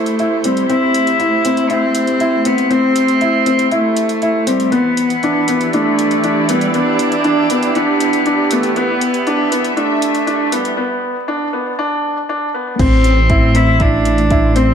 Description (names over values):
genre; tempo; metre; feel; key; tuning
piano and strings electronica; 119 BPM; 4/4; straight; A minor; A4 = 440 Hz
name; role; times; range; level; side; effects
rich cello; melody; 0.0-14.7 s; G3 to E4; -17 LUFS; equal; none
muted symphonic string section; sustained chords; 0.0-14.7 s; E3 to E5; -22 LUFS; equal; sidechain pumping
felt-muted upright piano; riff; 0.0-14.7 s; B3 to E4; -16 LUFS; left 1 dB; none
deep house drum kit; drums; 0.1-14.7 s; crash cymbal, hi-hat; -28 LUFS; equal; studio reverb
dark detuned saw bass; bass; 12.8-14.7 s; A1; -14 LUFS; equal; sidechain pumping
electronic kick drum; drums; 12.8-14.4 s; none; -16 LUFS; equal; studio reverb
room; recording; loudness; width
wet echo chamber reverb, RT60 1.9 s, small room ambience; dark, warm production, high-pass filter; -12 LUFS; side -7 dB against mid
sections
0.0-12.8 A section; 12.8-14.7 B section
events
build-up 0.0-12.8; break 10.8-12.8; drop 12.8-14.7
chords
0.0 Am7; 4.7 Em7; 12.8 Am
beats
0.19 | 0.69 1.20 1.70 2.21 | 2.71 3.21 3.72 4.22 | 4.73 5.23 5.74 6.24 | 6.75 7.25 7.75 8.26 | 8.76 9.27 9.77 10.27 | 10.78 11.28 11.79 12.29 | 12.79 13.30 13.80 14.31